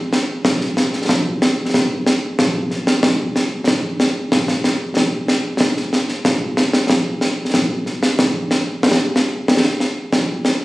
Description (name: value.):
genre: scottish traditional.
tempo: 93 BPM.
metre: 4/4.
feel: straight.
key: none.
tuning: none.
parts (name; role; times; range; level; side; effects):
concert snare drum and concert bass drum; drums; 0.1-10.6 s; none; -15 LUFS; equal; none.
room: wet recital hall reverb, RT60 1.3 s.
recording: recorded on a phone in the room, studio reverb.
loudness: -15 LUFS.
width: side -19 dB against mid.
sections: 0.0-10.6 A section.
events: none.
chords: none.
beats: 0.44 1.09 1.73 | 2.38 3.02 3.67 4.32 | 4.96 5.61 6.25 6.89 | 7.54 8.19 8.83 9.48 | 10.12.